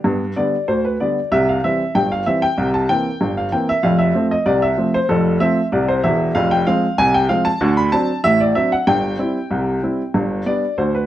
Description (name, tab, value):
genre	ragtime piano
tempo	95 BPM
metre	2/4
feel	straight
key	C major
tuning	A4 = 440 Hz
part	clear upright piano	solo	0.0-11.1 s	E1 to B5	-15 LUFS	equal	none
room	moderate studio reverb, RT60 0.7 s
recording	none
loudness	-15 LUFS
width	side -13 dB against mid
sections	0.0-1.3 A section; 1.3-11.1 B section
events	none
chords	0.0 G; 1.3 C; 2.6 C7; 3.8 F; 6.4 Fm; 7.6 D7; 8.9 C/G; 10.1 G